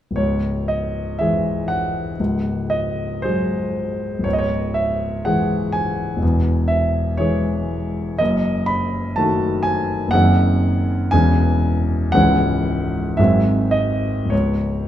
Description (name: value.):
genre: classical, romantic character piece for solo piano.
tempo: 51-63 BPM.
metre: 2/4.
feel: rubato.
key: C# minor.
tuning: A4 = 442 Hz.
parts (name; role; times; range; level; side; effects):
warm grand piano; solo; 0.1-14.9 s; C#1 to B5; -17 LUFS; equal; none.
room: moderate recital hall reverb, RT60 1.6 s.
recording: minimal, uncompressed stereo recording.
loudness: -17 LUFS.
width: side -11 dB against mid.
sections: 0.2-14.9 A section.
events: none.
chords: 0.2 C#m; 2.2 G#7/C#; 4.3 C#m; 6.2 C#m/E; 8.2 D#dim/F#; 10.1 G#7/F#; 11.1 C#m/E; 12.1 C#m; 13.2 G#7; 14.3 N.C..